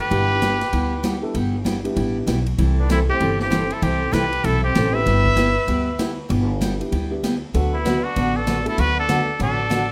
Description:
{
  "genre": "country, western swing",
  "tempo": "194 BPM",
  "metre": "4/4",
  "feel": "swing 62% on 8ths",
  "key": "G major",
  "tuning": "A4 = 440 Hz",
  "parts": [
    { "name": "trumpet with straight mute", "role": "melody", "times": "0.0-9.9 s", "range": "D4 to E5", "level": "-25 LUFS", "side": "equal", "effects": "none" },
    { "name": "clear fiddle", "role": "second line", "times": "0.0-9.9 s", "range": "B3 to B4", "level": "-30 LUFS", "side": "equal", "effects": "none" },
    { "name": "swinging big-band drum kit", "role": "drums", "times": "0.0-9.8 s", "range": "hi-hat, kick drum, ride cymbal, snare drum", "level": "-32 LUFS", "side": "equal", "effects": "none" },
    { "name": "picked steel-string acoustic guitar", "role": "accompaniment", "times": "0.1-9.8 s", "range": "C3 to B4", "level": "-26 LUFS", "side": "equal", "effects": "none" },
    { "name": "warm upright piano", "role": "accompaniment", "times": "0.1-9.3 s", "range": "G3 to A4", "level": "-31 LUFS", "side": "equal", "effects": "none" },
    { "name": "upright bass", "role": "bass", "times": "0.1-9.9 s", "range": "G1 to D2", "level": "-25 LUFS", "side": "equal", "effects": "none" }
  ],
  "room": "light reverb",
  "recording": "none",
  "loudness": "-20 LUFS",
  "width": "mono",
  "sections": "0.0-9.9 A section",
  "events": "none",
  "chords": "0.1 G6; 2.6 C6; 5.1 G6; 7.5 D6"
}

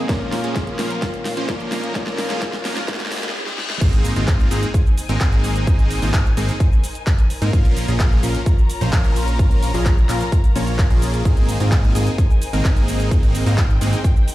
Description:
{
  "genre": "EDM, festival progressive house",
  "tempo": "129 BPM",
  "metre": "4/4",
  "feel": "straight",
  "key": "Ab major",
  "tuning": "A4 = 440 Hz",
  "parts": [
    { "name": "fingerpicked acoustic archtop guitar", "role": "accompaniment", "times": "0.0-3.3 s", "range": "Bb2 to Bb4", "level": "-28 LUFS", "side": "left 2 dB", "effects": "sidechain pumping, tape echo" },
    { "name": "dark symphonic string section", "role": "sustained chords", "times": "0.0-14.3 s", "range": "Bb2 to Bb5", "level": "-32 LUFS", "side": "left 3 dB", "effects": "sidechain pumping" },
    { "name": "supersaw chords", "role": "riff", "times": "0.0-14.0 s", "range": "F3 to Db5", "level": "-25 LUFS", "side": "equal", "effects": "sidechain pumping, tape echo" },
    { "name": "riser, reverse cymbal and impact", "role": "sound effects", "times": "0.3-5.7 s", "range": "none", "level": "-32 LUFS", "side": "left 1 dB", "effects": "none" },
    { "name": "big-room dance drum kit", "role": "drums", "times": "0.1-14.3 s", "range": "crash cymbal, handclaps, hi-hat, shaker, snare drum", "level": "-28 LUFS", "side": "equal", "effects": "none" },
    { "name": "electronic kick drum", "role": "drums", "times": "0.1-14.1 s", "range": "none", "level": "-16 LUFS", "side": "equal", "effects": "none" },
    { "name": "fat analog bass", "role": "bass", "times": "3.8-14.0 s", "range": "Ab1 to Ab2", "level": "-21 LUFS", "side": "equal", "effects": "sidechain pumping" }
  ],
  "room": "little or no reverb",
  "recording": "played on a big sound system in a bare room, large studio reverb, high-pass filter",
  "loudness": "-16 LUFS",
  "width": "side -16 dB against mid",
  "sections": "0.0-3.8 A section; 3.8-14.3 B section",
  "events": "build-up 0.0-3.8; drum fill 0.0-3.3, 3.3-3.8; filter sweep on supersaw synth 0.0-3.8; filter sweep 0.0-3.8; reverse cymbal 2.9-3.8; drop 3.8-14.3; impact 3.8-5.7",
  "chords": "0.1 Bbm; 3.8 Abadd9; 7.5 Bbm; 11.3 Abadd9"
}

